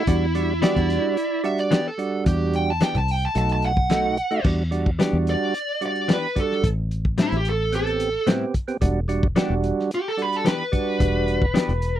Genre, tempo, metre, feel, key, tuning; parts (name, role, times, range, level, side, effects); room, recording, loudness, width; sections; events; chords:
straight-eighth soul blues; 110 BPM; 4/4; straight; E minor; A4 = 440 Hz
dark smooth lead guitar; melody; 0.0-12.0 s; E4 to A5; -24 LUFS; equal; overdrive
percussive tonewheel organ; accompaniment; 0.0-11.5 s; G3 to G4; -25 LUFS; right 5 dB; slow rotary speaker
fingered electric bass; bass; 0.1-12.0 s; E1 to E2; -24 LUFS; equal
warm soul drum kit; drums; 0.1-12.0 s; crash cymbal, hi-hat, kick drum, snare drum; -22 LUFS; equal
overdriven slide guitar; second line; 0.6-2.5 s; G4 to E5; -27 LUFS; right 3 dB
direct-recorded clean electric guitar; stabs; 0.6-11.7 s; A2 to G4; -26 LUFS; left 6 dB
little or no reverb; dry, close 1970s-style studio recording; -20 LUFS; side -11 dB against mid
0.0-4.5 A section; 4.5-12.0 B section
lead electric guitar solo 4.5-12.0
0.1 Em7; 3.4 B7; 4.5 Em7; 6.6 Am7; 8.8 Em7